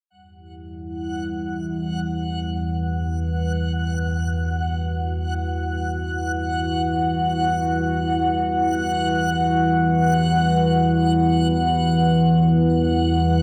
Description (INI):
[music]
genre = dark ambient drone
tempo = free time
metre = none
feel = none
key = E minor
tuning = A4 = 438 Hz
[part]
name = dark analog pad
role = sustained chords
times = 0.1-13.4 s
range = G3 to F#5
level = -26 LUFS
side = equal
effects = chorus, phaser
[part]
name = analog drone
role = drone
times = 0.5-13.4 s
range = E2 to E3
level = -24 LUFS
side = equal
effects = chorus
[part]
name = backwards swelling texture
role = texture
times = 1.0-13.4 s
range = F#5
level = -31 LUFS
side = equal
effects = built-in reverb
[sound]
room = wet spring reverb, RT60 2.2 s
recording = none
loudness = -21 LUFS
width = mono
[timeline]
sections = 0.1-13.4 A section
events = none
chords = 0.1 Emadd9